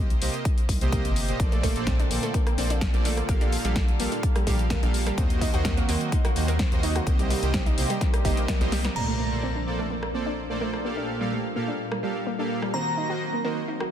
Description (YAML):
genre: progressive house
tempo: 127 BPM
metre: 4/4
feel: straight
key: Bb major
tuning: A4 = 441 Hz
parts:
  - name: round analog bass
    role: bass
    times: 0.0-8.9 s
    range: G1 to Eb2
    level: -28 LUFS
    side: equal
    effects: sidechain pumping
  - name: deep house drum kit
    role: drums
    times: 0.1-13.9 s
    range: crash cymbal, hi-hat, rim click, snare drum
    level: -32 LUFS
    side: left 1 dB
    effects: overdrive
  - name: soft supersaw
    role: stabs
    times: 0.2-13.6 s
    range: Bb2 to F5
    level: -30 LUFS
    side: right 2 dB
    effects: sidechain pumping, tape echo
  - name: electronic kick drum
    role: drums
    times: 0.5-8.6 s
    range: none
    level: -24 LUFS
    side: equal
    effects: none
  - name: warm analog pad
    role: sustained chords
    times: 1.7-13.9 s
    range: Bb2 to C5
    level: -34 LUFS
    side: equal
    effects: chorus, sidechain pumping
  - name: analog pluck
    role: arpeggios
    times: 1.5-13.9 s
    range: G3 to Bb4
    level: -32 LUFS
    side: right 1 dB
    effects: chorus, sidechain pumping, tape echo
  - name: glassy synth bell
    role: melody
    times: 9.0-9.6, 12.7-13.4 s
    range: Bb5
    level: -35 LUFS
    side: equal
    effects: chorus, dub echo
  - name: airy dreamy lead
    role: second line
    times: 9.0-9.6, 12.7-13.4 s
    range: Bb5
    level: -37 LUFS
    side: left 1 dB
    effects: chorus, sidechain pumping, tape echo
  - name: impact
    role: sound effects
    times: 9.0-10.8 s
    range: none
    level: -34 LUFS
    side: equal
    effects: none
room: light reverb, digital ambience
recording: dense, heavily limited modern master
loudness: -23 LUFS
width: side -10 dB against mid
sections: 0.0-9.0 A section; 9.0-13.9 B section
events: drum fill 8.6-9.0; impact 9.0-10.8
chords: 0.0 Cm7; 1.4 Bbmaj9; 3.3 Gm9/Bb; 5.2 Ebm6; 7.1 Cm7; 9.0 Bbmaj9; 10.8 Gm9/Bb; 12.7 Ebm6